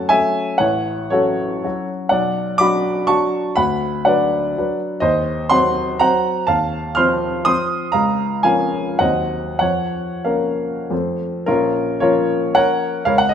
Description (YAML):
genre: classical, romantic triple-time dance for piano with dotted rhythms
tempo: 87-131 BPM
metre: 3/4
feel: rubato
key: Bb minor from 5.0 s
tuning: A4 = 440 Hz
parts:
  - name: warm baby grand piano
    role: solo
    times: 0.0-13.3 s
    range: A1 to F6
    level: -16 LUFS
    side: equal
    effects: none
room: light reverb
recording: minimal, uncompressed stereo recording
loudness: -16 LUFS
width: side -8 dB against mid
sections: 0.0-11.5 A section; 11.5-13.3 B section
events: none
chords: 0.0 F#m; 0.6 F#m/A; 2.1 Bm; 3.6 Bm/D; 5.0 Cdim/Eb; 6.5 F7/Eb; 7.9 Bbm/Db; 9.0 Cdim/Eb; 9.6 Bbm/F; 10.9 F; 11.5 Bbm